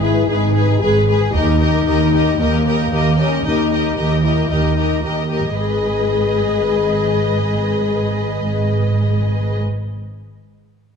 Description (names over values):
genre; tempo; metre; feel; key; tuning
cinematic, epic orchestral film score; 114 BPM; 4/4; straight; G# harmonic minor; A4 = 440 Hz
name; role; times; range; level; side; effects
warm symphonic violin section; melody; 0.0-9.6 s; B4 to D#5; -25 LUFS; left 5 dB; none
rich chamber violin section; second line; 0.0-9.6 s; G#4 to B4; -26 LUFS; equal; none
warm symphonic viola section; accompaniment; 0.0-9.6 s; G4 to G#4; -26 LUFS; right 1 dB; none
warm French horn section; sustained chords; 0.0-9.6 s; A#3 to G#4; -20 LUFS; left 8 dB; none
dark symphonic cello section; bass; 0.0-9.6 s; D#2 to G#2; -20 LUFS; right 3 dB; none
warm symphonic double bass section; bass; 0.0-9.6 s; G#1 to D#2; -21 LUFS; right 3 dB; none
taiko ensemble; drums; 1.3-2.4 s; none; -25 LUFS; right 1 dB; none
room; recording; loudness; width
moderate scoring stage reverb, RT60 1.9 s; dark, warm production, lossy compression artefacts; -14 LUFS; side -6 dB against mid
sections
0.0-5.6 A section; 5.6-9.8 B section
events
none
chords
0.0 G#m; 1.3 D#; 5.6 G#m